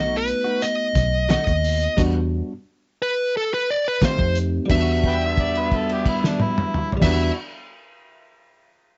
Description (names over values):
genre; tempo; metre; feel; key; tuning
straight-eighth soul blues; 88 BPM; 4/4; straight; E minor; A4 = 440 Hz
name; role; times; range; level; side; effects
smooth overdriven lead guitar; melody; 0.0-7.3 s; A4 to E5; -25 LUFS; equal; none
tine electric piano; accompaniment; 0.0-7.3 s; G3 to G4; -29 LUFS; equal; overdrive, phaser
direct-recorded clean electric guitar; stabs; 0.0-7.4 s; Eb3 to F#4; -33 LUFS; equal; analog chorus
vintage muted fingered electric bass; bass; 0.0-7.3 s; B1 to F2; -26 LUFS; equal; none
cloth-damped thuddy drum kit; drums; 0.3-7.2 s; crash cymbal, hi-hat, kick drum, snare drum, toms; -26 LUFS; equal; none
overdriven harmonica; second line; 5.1-7.3 s; G3 to G5; -30 LUFS; equal; none
room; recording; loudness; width
light reverb; nothing above 7.7 kHz; -21 LUFS; mono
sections
0.0-4.7 A section; 4.7-7.4 B section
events
held note 4.7-7.0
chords
0.0 B7; 2.0 Em9; 4.0 F7; 4.7 Em9